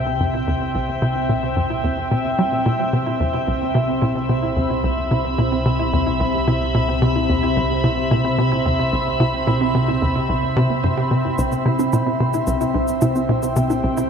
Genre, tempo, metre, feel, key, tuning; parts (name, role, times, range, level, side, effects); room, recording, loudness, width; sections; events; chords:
ambient, sequencer-driven space music; 110 BPM; 4/4; straight; C major; A4 = 440 Hz
evolving wavetable pad; sustained chords; 0.0-14.1 s; C3 to B5; -20 LUFS; equal; chorus, built-in reverb, shimmer reverb
wide unison pluck; arpeggios; 0.0-14.1 s; B3 to C5; -28 LUFS; moving between left 1 dB and right 6 dB; auto-pan, analog delay, shimmer reverb
tight sequencer bass; riff; 0.0-14.0 s; C2 to G3; -21 LUFS; equal; lush chorus, analog delay
fat analog bass; bass; 0.0-14.1 s; C2; -31 LUFS; equal
bongos and shaker; percussion; 11.4-14.1 s; -32 LUFS; left 4 dB; overdrive, analog delay
wet cathedral reverb, RT60 5.7 s; in a vast, echoing space; -17 LUFS; side -7 dB against mid
0.0-14.1 A section
fade-in on synth arpeggio sound 0.0-14.1; filter sweep on analog synth bass 0.0-14.1
0.0 C